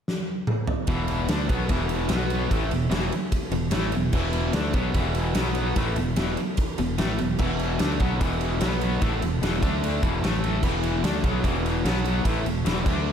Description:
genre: classic rock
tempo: 148 BPM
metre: 4/4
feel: straight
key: unclear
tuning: A4 = 439 Hz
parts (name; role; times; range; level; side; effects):
- big rock drum kit; drums; 0.1-13.0 s; crash cymbal, kick drum, ride cymbal, snare drum, toms; -26 LUFS; equal; none
- overdriven electric guitar; riff; 0.9-13.1 s; E2 to D4; -29 LUFS; left 10 dB; harmonic tremolo
- tight distorted guitar; riff; 0.9-13.1 s; E2 to D4; -29 LUFS; right 8 dB; distortion, slapback echo
- modern bright fingered electric bass; bass; 0.9-13.1 s; E1 to D2; -28 LUFS; equal; none
room: light reverb, small room ambience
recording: none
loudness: -22 LUFS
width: side -8 dB against mid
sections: 0.9-13.1 A section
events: drum fill 0.1-0.9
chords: 0.0 N.C.; 0.9 E5; 2.1 B5; 2.5 E5; 5.4 B5; 5.8 E5; 8.6 B5; 9.0 E5; 9.6 D5; 10.0 E5; 10.2 A5; 10.6 E5; 11.9 B5; 12.3 E5

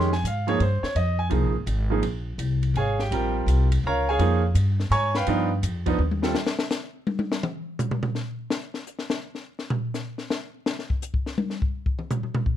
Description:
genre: modal jazz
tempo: 167 BPM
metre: 3/4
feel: swing 66% on 8ths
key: Bb dorian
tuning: A4 = 440 Hz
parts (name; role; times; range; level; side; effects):
- clear grand piano; accompaniment; 0.0-6.3 s; F3 to Db6; -24 LUFS; right 3 dB; none
- upright bass; bass; 0.0-6.3 s; Ab1 to Ab2; -23 LUFS; equal; none
- compact cocktail drum kit; drums; 0.0-12.6 s; hi-hat, kick drum, ride cymbal, snare drum, toms; -28 LUFS; left 2 dB; none
room: little or no reverb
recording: dark, warm production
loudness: -23 LUFS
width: side -11 dB against mid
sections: 0.0-6.4 A section; 6.4-12.6 A section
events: drum fill 6.0-6.4; drum solo 6.4-12.6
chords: 0.0 Bbm9; 5.3 G7b13; 6.4 N.C.

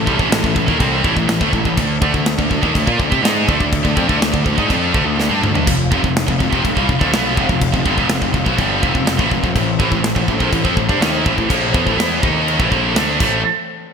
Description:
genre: heavy metal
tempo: 123 BPM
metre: 4/4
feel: straight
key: A minor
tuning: A4 = 443 Hz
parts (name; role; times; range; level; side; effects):
- warm symphonic string section; sustained chords; 0.0-13.4 s; A2 to F5; -26 LUFS; equal; none
- scooped high-gain guitar; riff; 0.0-13.4 s; F2 to G#4; -20 LUFS; left 12 dB; distortion
- scooped high-gain guitar; riff; 0.0-13.4 s; F2 to G#4; -19 LUFS; right 11 dB; distortion
- fuzz picked electric bass; bass; 0.0-13.4 s; F1 to C3; -22 LUFS; equal; overdrive
- modern studio drum kit; drums; 0.1-13.3 s; crash cymbal, kick drum, snare drum, splash cymbal, toms; -19 LUFS; equal; gated reverb
room: moderate lush hall reverb, RT60 1.8 s, small room ambience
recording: bright 1980s-style digital production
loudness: -14 LUFS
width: side -6 dB against mid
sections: 0.0-13.4 A section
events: drum fill 5.2-5.7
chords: 0.0 Am; 1.8 D5; 5.7 F5; 9.5 Am

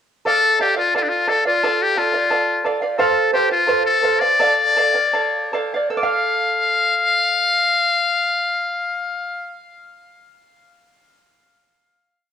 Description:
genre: andean folk, Andean ensemble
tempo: 71-88 BPM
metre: 2/4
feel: straight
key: D minor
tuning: A4 = 440 Hz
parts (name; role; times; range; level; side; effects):
- trumpet with metal mute; melody; 0.3-9.6 s; D4 to F5; -17 LUFS; left 3 dB; cassette tape, tape echo
- charango; accompaniment; 0.3-9.8 s; A4 to F5; -21 LUFS; right 4 dB; cassette tape
room: wet studio reverb, RT60 0.7 s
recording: home recording on cassette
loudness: -16 LUFS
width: side -9 dB against mid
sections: 0.3-6.0 A section; 6.0-9.3 final chord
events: slowing down 3.0-6.0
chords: 0.3 Dm; 3.0 F; 4.4 Dm

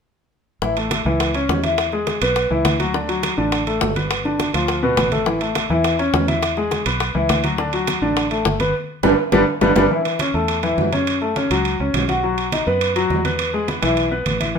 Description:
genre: latin, salsa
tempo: 207 BPM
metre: 4/4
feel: straight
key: A major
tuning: A4 = 442 Hz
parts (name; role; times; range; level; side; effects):
- clear grand piano; accompaniment; 0.6-14.6 s; B2 to F#5; -19 LUFS; left 2 dB; none
- fingered electric bass; bass; 0.6-14.6 s; G1 to F#2; -25 LUFS; right 1 dB; none
- bongos; percussion; 0.6-9.8 s; none; -25 LUFS; left 6 dB; none
- congas; percussion; 0.6-14.6 s; none; -29 LUFS; right 1 dB; none
- timbales; percussion; 0.8-14.6 s; none; -24 LUFS; right 8 dB; none
room: moderate studio reverb, RT60 0.8 s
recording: minimal, uncompressed stereo recording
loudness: -17 LUFS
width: side -6 dB against mid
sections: 0.6-9.9 A section; 9.9-14.6 B section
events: drum fill 8.7-9.9; band accent 8.7-9.9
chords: 0.6 A; 1.8 E7; 2.9 D; 4.1 G7; 5.3 A; 6.4 E7; 7.6 D; 8.7 G; 9.9 A; 11.1 F#m; 12.2 B; 13.4 E

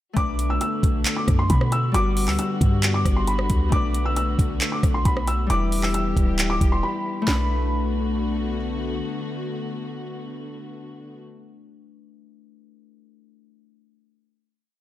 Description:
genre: hip hop, trap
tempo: 135 BPM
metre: 4/4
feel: half-time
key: B minor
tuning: A4 = 440 Hz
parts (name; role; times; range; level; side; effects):
- Celtic harp; accompaniment; 0.1-11.2 s; G3 to B4; -28 LUFS; left 4 dB; none
- felt-muted upright piano; melody; 0.2-8.6 s; B5 to E6; -28 LUFS; equal; none
- dark studio string section; sustained chords; 0.2-11.2 s; D3 to G4; -32 LUFS; right 1 dB; none
- clean 808-style bass; bass; 0.2-9.0 s; D1 to B2; -24 LUFS; equal; none
- trap drum kit; drums; 0.2-7.4 s; handclaps, hi-hat, kick drum, rim click, snare drum; -23 LUFS; equal; none
room: light reverb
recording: none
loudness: -20 LUFS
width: side -14 dB against mid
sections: 0.2-7.3 hook; 7.3-10.8 final chord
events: break 6.8-7.3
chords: 0.2 Bm7; 1.9 Gmaj7; 3.7 Bm7; 5.5 Em; 7.3 Bm7

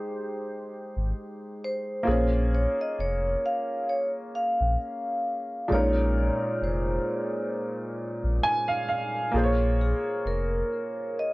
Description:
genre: lo-fi hip hop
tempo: 66 BPM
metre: 4/4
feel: swing 56% on 16ths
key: Bb dorian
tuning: A4 = 440 Hz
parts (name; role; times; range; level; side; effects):
- vibraphone with soft mallets; melody; 0.0-11.3 s; Ab4 to F5; -30 LUFS; equal; low-pass filter
- warm upright piano; accompaniment; 0.0-11.3 s; Bb2 to Ab5; -29 LUFS; right 1 dB; low-pass filter
- sub bass with octave; bass; 1.0-10.6 s; F1 to Bb1; -26 LUFS; equal; none
room: moderate small room reverb, RT60 0.5 s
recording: cassette tape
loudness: -25 LUFS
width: side -21 dB against mid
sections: 0.0-9.3 A section; 9.3-11.3 B section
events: upright piano fill 8.0-9.3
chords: 0.0 Abmaj7; 2.1 Bbm7; 5.7 Bbm11; 9.3 Bbm7

